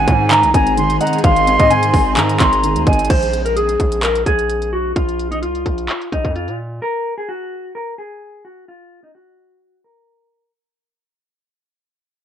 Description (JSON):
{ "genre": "hip hop, trap", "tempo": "129 BPM", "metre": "4/4", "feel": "half-time", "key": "unclear", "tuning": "A4 = 440 Hz", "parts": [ { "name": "mellow electric guitar", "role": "melody", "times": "0.0-10.5 s", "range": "Eb4 to C6", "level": "-18 LUFS", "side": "left 2 dB", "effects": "low-pass filter" }, { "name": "silver concert flute", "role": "second line", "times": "0.0-3.1 s", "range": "Ab5 to C6", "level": "-19 LUFS", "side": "right 5 dB", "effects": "analog delay" }, { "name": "felt-muted upright piano", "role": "accompaniment", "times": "0.0-3.1 s", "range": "Eb3 to Eb5", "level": "-21 LUFS", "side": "left 1 dB", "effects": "low-pass filter" }, { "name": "granular cloud pad", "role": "sustained chords", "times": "0.0-3.1 s", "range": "Eb3 to Ab4", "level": "-24 LUFS", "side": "right 1 dB", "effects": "built-in reverb" }, { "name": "distorted 808-style bass", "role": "bass", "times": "0.0-6.8 s", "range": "Ab1 to Bb2", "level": "-22 LUFS", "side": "right 1 dB", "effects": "distortion" }, { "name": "trap drum kit", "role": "drums", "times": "0.1-6.6 s", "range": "crash cymbal, handclaps, hi-hat, kick drum", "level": "-18 LUFS", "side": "right 1 dB", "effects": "none" } ], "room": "little or no reverb", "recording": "dry, gritty hardware recording, transformer saturation, low-pass filter", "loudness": "-14 LUFS", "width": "side -9 dB against mid", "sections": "0.0-3.1 A section; 3.1-10.5 B section", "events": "fade-out 3.1-10.5; filter sweep 3.1-10.5", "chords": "0.0 Ab; 3.1 Bb5; 6.8 N.C." }